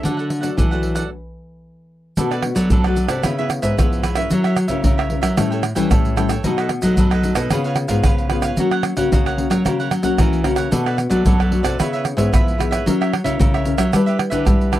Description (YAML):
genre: samba and choro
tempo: 112 BPM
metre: 4/4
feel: straight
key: unclear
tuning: A4 = 440 Hz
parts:
  - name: cavaquinho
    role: accompaniment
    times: 0.0-14.8 s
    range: D4 to G5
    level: -26 LUFS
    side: right 5 dB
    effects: none
  - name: nylon-string guitar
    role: accompaniment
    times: 0.0-14.8 s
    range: F#2 to B4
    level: -23 LUFS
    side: left 4 dB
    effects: none
  - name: nylon-string guitar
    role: bass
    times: 0.0-14.8 s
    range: G#2 to G3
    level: -21 LUFS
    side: equal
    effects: none
  - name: tube shaker, surdo, pandeiro and tamborim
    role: percussion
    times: 0.1-14.8 s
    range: none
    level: -19 LUFS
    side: right 1 dB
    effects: none
room: little or no reverb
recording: dry, close 1970s-style studio recording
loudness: -16 LUFS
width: side -13 dB against mid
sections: 0.0-2.2 A section; 2.2-14.8 B section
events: stop 1.1-2.2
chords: 0.0 D; 1.1 N.C.; 2.2 Bm7; 3.2 C#m7; 4.3 F#7; 5.4 A7; 6.4 B7; 7.5 C#7; 8.6 F#; 10.7 Bm7; 11.8 C#m7; 12.9 F#7; 13.9 G6